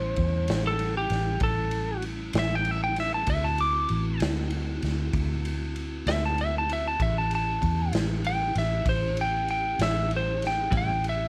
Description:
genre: slow blues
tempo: 64 BPM (dotted quarters)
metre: 12/8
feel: straight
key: A mixolydian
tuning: A4 = 439 Hz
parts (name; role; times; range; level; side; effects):
- lightly driven lead guitar; melody; 0.0-11.3 s; G4 to D6; -30 LUFS; equal; none
- tonewheel organ; sustained chords; 0.0-11.3 s; G3 to G4; -40 LUFS; equal; slow rotary speaker, overdrive, chorus vibrato
- vintage muted fingered electric bass; bass; 0.0-11.3 s; A1 to E2; -31 LUFS; equal; none
- raw garage drum kit; drums; 0.2-11.2 s; kick drum, ride cymbal, snare drum; -34 LUFS; equal; none
- clean electric guitar; accompaniment; 10.7-10.9 s; A2 to E4; -35 LUFS; equal; tremolo
room: light reverb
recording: none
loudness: -27 LUFS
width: mono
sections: 0.0-11.3 A section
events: lead electric guitar solo 0.0-11.3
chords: 0.0 A7; 3.3 D7; 7.0 A7

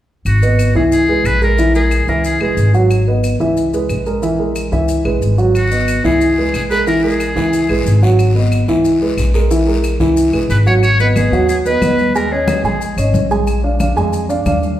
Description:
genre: latin, salsa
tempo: 182 BPM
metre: 4/4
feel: straight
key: G# minor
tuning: A4 = 439 Hz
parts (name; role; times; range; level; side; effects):
- trumpet with metal mute; melody; 0.3-2.7, 5.6-8.0, 10.5-13.0 s; F#4 to C#5; -19 LUFS; left 1 dB; none
- upright bass; bass; 0.3-14.8 s; G#1 to E#2; -16 LUFS; equal; none
- claves; percussion; 0.3-14.6 s; none; -32 LUFS; left 1 dB; none
- maracas; percussion; 0.3-14.8 s; none; -34 LUFS; left 6 dB; none
- dark upright piano; accompaniment; 0.4-14.7 s; E3 to G#5; -15 LUFS; right 1 dB; none
- guiro; percussion; 5.6-10.8 s; none; -32 LUFS; left 4 dB; none
- congas; percussion; 10.8-14.8 s; none; -22 LUFS; left 2 dB; none
room: wet large studio reverb, RT60 1.4 s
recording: heard from further back in the room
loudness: -12 LUFS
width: side -12 dB against mid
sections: 0.3-10.8 A section; 10.8-14.8 B section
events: none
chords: 0.3 G#m7; 0.9 C#m7; 1.6 A#m7b5; 2.2 C#m7; 2.9 G#m7; 3.6 C#m7; 4.2 A#m7b5; 4.9 C#m7; 5.5 G#m7; 6.2 C#m7; 6.9 A#m7b5; 7.5 C#m7; 8.2 G#m7; 8.9 C#m7; 9.5 A#m7b5; 10.2 C#m7; 10.8 G#m7; 12.2 D#7sus4; 13.5 A#7

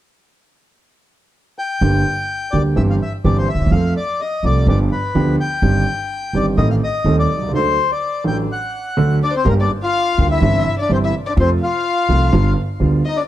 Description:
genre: tango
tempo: 126 BPM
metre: 4/4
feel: rubato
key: unclear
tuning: A4 = 440 Hz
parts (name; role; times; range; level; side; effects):
- bandoneon; melody; 1.6-13.2 s; Bb3 to G5; -20 LUFS; left 3 dB; plate reverb, tape echo
- warm concert grand piano; accompaniment; 1.8-13.0 s; Eb1 to A4; -18 LUFS; right 2 dB; none
- upright bass; bass; 1.8-13.0 s; G1 to F2; -18 LUFS; equal; none
- dark violin; second line; 9.2-13.2 s; Bb4 to F5; -25 LUFS; left 5 dB; plate reverb
room: moderate studio ambience, RT60 0.5 s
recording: dark, warm production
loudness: -15 LUFS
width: side -13 dB against mid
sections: 0.0-1.8 A section; 1.8-9.5 B section; 9.5-13.3 C section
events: none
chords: 0.0 N.C.; 1.8 Gm; 2.8 C/G; 3.7 F; 4.7 G7; 5.6 Cm/G; 6.6 Adim; 7.5 D; 9.5 Gm; 10.4 C/G; 11.4 F; 12.3 G7

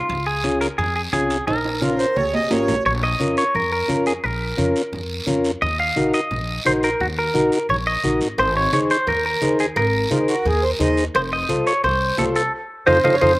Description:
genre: latin, cumbia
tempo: 174 BPM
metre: 4/4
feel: straight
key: Bb minor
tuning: A4 = 440 Hz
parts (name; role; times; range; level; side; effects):
- clean electric guitar; melody; 0.0-13.3 s; F4 to F5; -21 LUFS; equal; spring reverb, slapback echo
- upright bass; bass; 0.0-13.3 s; F1 to F2; -27 LUFS; equal; none
- congas; percussion; 0.1-13.3 s; none; -29 LUFS; right 1 dB; none
- guiro; percussion; 0.1-13.3 s; none; -32 LUFS; right 2 dB; none
- timbales and cowbell; percussion; 0.1-2.8, 8.4-13.3 s; none; -28 LUFS; right 2 dB; slapback echo
- combo organ; accompaniment; 0.4-13.3 s; Db4 to C5; -21 LUFS; left 1 dB; slapback echo
- accordion; second line; 1.8-2.8, 10.1-13.4 s; F4 to Eb5; -20 LUFS; right 2 dB; none
room: little or no reverb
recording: recorded outdoors, with no room sound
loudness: -17 LUFS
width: side -20 dB against mid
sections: 0.0-2.9 A section; 2.9-13.4 B section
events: drum fill 1.5-2.9; band accent 12.5-13.4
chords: 0.1 Db; 1.5 Bbm; 5.6 Ebm; 8.4 Ab; 11.1 F7

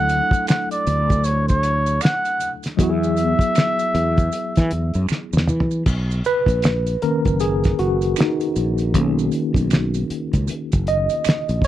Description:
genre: R&B, neo-soul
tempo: 78 BPM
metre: 4/4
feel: swing 60% on 16ths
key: unclear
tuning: A4 = 440 Hz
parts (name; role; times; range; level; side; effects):
- trumpet with cup mute; melody; 0.0-5.1 s; C#5 to F#5; -21 LUFS; equal; slapback echo
- tine electric piano; accompaniment; 0.0-11.7 s; D#3 to D#5; -23 LUFS; equal; overdrive, fast stereo tremolo
- fretless electric bass; bass; 0.0-11.6 s; F#1 to E3; -21 LUFS; equal; none
- cloth-damped thuddy drum kit; drums; 0.1-11.7 s; crash cymbal, finger snaps, hi-hat, kick drum, snare drum, toms; -19 LUFS; equal; none
- maracas and finger snaps; percussion; 0.1-11.7 s; none; -35 LUFS; right 22 dB; none
room: little or no reverb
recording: dry, close 1970s-style studio recording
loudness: -17 LUFS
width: side -13 dB against mid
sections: 0.0-5.9 A section; 5.9-11.7 B section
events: drum fill 5.1-5.9; tine electric piano solo 5.9-11.7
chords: 0.0 Dadd9; 2.8 Eadd9; 5.9 Bmaj9

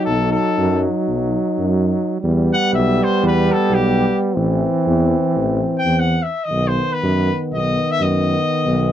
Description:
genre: balkan folk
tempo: 252 BPM (eighths)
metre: 9/8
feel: straight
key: B phrygian dominant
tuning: A4 = 440 Hz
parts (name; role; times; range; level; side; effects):
- clear trumpet; second line; 0.0-8.9 s; G4 to G5; -21 LUFS; left 2 dB; none
- warm euphonium; accompaniment; 0.0-8.9 s; B3 to D#4; -22 LUFS; left 6 dB; none
- warm trombone; accompaniment; 0.0-8.9 s; D#3 to G3; -21 LUFS; right 5 dB; none
- warm tuba; bass; 0.1-8.9 s; A1 to F#2; -19 LUFS; equal; none
room: little or no reverb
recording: none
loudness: -15 LUFS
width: side -10 dB against mid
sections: 0.0-8.9 A section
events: trumpet solo 0.0-8.9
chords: 0.0 B; 2.2 Em; 4.4 Am; 6.5 B

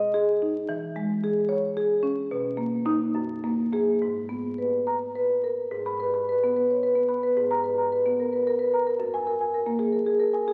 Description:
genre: classical, contemporary piece for solo marimba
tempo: 72 BPM (dotted quarters)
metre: 6/8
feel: uneven beats, rubato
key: G# minor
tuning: A4 = 440 Hz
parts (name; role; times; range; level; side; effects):
- marimba with medium mallets; solo; 0.0-10.5 s; F#2 to B5; -25 LUFS; equal; none
room: wet recital hall reverb, RT60 1.5 s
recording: very old 78 rpm record, vinyl crackle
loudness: -25 LUFS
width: mono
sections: 0.0-5.7 A section; 5.7-10.5 B section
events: none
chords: 0.0 B6; 0.7 E6; 2.3 Bmaj7; 3.2 F#add9; 4.0 G#madd9; 5.7 G#m; 7.4 G#madd9; 9.0 F#add9

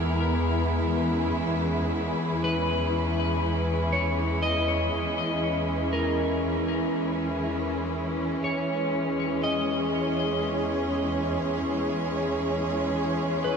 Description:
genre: ambient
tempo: 60 BPM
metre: 4/4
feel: straight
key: E lydian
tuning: A4 = 440 Hz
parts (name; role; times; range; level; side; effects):
- rich studio string section; sustained chords; 0.0-13.6 s; E3 to C#5; -26 LUFS; equal; none
- electric guitar at the edge of break-up; arpeggios; 0.0-13.6 s; A#4 to D#5; -31 LUFS; left 1 dB; analog chorus, ping-pong delay
- clear studio double bass section; bass; 0.0-13.6 s; E2; -31 LUFS; equal; none
room: wet huge ambient reverb, RT60 7.7 s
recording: dreamy mix soaked in reverb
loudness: -24 LUFS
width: side -6 dB against mid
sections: 0.0-13.6 A section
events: none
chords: 0.0 Emaj7; 8.4 C#sus2/E

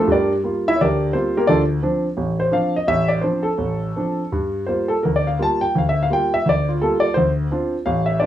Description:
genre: solo jazz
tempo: 170 BPM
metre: 4/4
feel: swing 63% on 8ths, rubato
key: D minor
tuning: A4 = 440 Hz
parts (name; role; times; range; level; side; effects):
- warm concert grand piano; solo; 0.0-8.3 s; A1 to A5; -17 LUFS; equal; none
room: moderate small room reverb, RT60 0.5 s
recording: rough home demo mix, small room ambience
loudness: -17 LUFS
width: side -11 dB against mid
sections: 0.0-8.3 A section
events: grand piano solo 0.0-8.3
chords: 0.1 Gm7; 1.5 Dm7; 4.3 Gm7; 7.2 Dm7

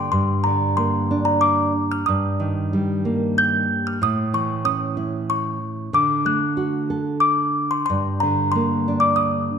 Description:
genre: children's music, lullaby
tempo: 93 BPM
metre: 3/4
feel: straight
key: G minor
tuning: A4 = 438 Hz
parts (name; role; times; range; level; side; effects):
- music box; melody; 0.0-9.6 s; Bb5 to G6; -21 LUFS; left 2 dB; none
- nylon-string guitar; accompaniment; 0.0-9.6 s; G2 to G5; -22 LUFS; right 1 dB; none
room: wet concert hall reverb, RT60 1.7 s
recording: dark, warm production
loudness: -18 LUFS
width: side -7 dB against mid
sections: 0.1-9.6 A section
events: none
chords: 0.1 Gm; 2.1 Eb/G; 4.0 A; 5.9 D; 7.9 Gm

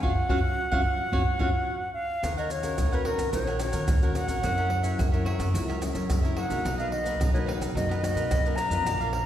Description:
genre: samba and choro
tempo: 109 BPM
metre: 4/4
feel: straight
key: Eb minor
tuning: A4 = 436 Hz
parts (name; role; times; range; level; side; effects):
- reedy concert flute; melody; 0.0-9.3 s; Bb4 to A#5; -30 LUFS; right 1 dB; none
- cavaquinho; accompaniment; 0.0-9.2 s; D4 to F#5; -36 LUFS; right 3 dB; none
- nylon-string guitar; accompaniment; 0.0-9.3 s; F#2 to Bb4; -33 LUFS; left 3 dB; none
- upright bass; bass; 0.0-9.3 s; F#1 to Gb3; -30 LUFS; equal; none
- surdo, maracas, pandeiro and tamborim; percussion; 0.0-9.3 s; none; -29 LUFS; equal; none
room: wet scoring stage reverb, RT60 1.7 s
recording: recorded in a church or concert hall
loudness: -24 LUFS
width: side -11 dB against mid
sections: 0.0-2.2 A section; 2.2-9.3 B section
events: band accent 0.0-2.2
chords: 0.0 F#5; 2.2 Ebm7; 4.4 Gb7; 6.7 Bmaj7

